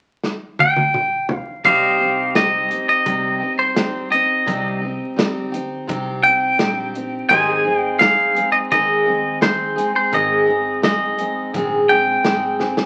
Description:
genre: honky-tonk and classic country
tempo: 85 BPM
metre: 4/4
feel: straight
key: C minor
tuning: A4 = 437 Hz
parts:
  - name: natural country drum kit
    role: drums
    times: 0.2-12.9 s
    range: hi-hat, kick drum, snare drum, toms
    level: -24 LUFS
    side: equal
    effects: none
  - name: twangy electric guitar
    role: melody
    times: 0.6-12.9 s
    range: C5 to Ab5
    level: -19 LUFS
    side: equal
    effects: none
  - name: picked steel-string acoustic guitar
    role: accompaniment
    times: 1.6-12.9 s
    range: Ab2 to Ab4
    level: -24 LUFS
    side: equal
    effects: none
  - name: pedal steel guitar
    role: sustained chords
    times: 1.6-12.9 s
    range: G4 to Eb5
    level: -29 LUFS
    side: equal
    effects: none
  - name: upright bass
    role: bass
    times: 1.6-12.8 s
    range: G1 to Eb2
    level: -38 LUFS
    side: equal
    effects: none
room: wet large studio reverb, RT60 0.9 s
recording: very old 78 rpm record, vinyl crackle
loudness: -18 LUFS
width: mono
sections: 0.0-1.6 A section; 1.6-12.9 B section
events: drum fill 0.2-1.6, 12.6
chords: 0.0 N.C.; 1.6 Cm; 7.3 Ab

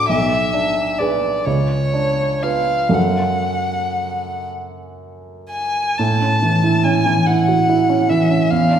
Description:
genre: classical, romantic duo for violin and grand piano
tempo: 38-50 BPM (dotted quarters)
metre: 6/8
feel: rubato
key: F# minor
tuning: A4 = 439 Hz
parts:
  - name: dark violin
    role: melody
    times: 0.0-8.8 s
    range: C#5 to A5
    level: -19 LUFS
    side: left 2 dB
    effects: none
  - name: warm baby grand piano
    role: accompaniment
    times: 0.0-8.8 s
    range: B1 to B4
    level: -18 LUFS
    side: right 2 dB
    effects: none
room: wet recital hall reverb, RT60 1.6 s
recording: recorded in a church or concert hall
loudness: -15 LUFS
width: side -9 dB against mid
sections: 0.0-6.0 A section; 6.0-8.8 B section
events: none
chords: 0.1 G#dim/B; 1.5 C#7b9; 3.0 F#m; 6.0 A

